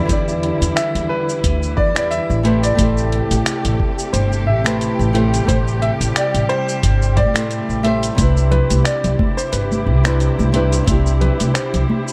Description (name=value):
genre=sunset chillout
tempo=89 BPM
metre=4/4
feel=swing 56% on 16ths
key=unclear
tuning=A4 = 443 Hz
part: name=nylon-string guitar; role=accompaniment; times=0.0-12.1 s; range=C3 to D5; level=-24 LUFS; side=equal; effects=tape echo, shimmer reverb
part: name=muted studio string section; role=sustained chords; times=0.0-12.1 s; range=C3 to G4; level=-27 LUFS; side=equal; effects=shimmer reverb
part: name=upright bass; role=bass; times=0.1-11.8 s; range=G1 to A2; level=-20 LUFS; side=equal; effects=none
part: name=dusty soul sampler-style drum kit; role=drums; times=0.1-12.1 s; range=cabasa, finger snaps, hi-hat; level=-27 LUFS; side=equal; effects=none
part: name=electronic kick drum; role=drums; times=0.1-11.0 s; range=none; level=-22 LUFS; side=equal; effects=none
part: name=warm grand piano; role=melody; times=0.8-12.1 s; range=B4 to E5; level=-25 LUFS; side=equal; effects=delay, shimmer reverb
part: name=congas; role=percussion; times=8.2-12.0 s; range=none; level=-26 LUFS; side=equal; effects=none
room=light reverb, small room ambience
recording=none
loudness=-17 LUFS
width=mono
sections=0.0-12.1 A section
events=none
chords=0.0 Em7; 2.5 Am7; 8.2 Cmaj7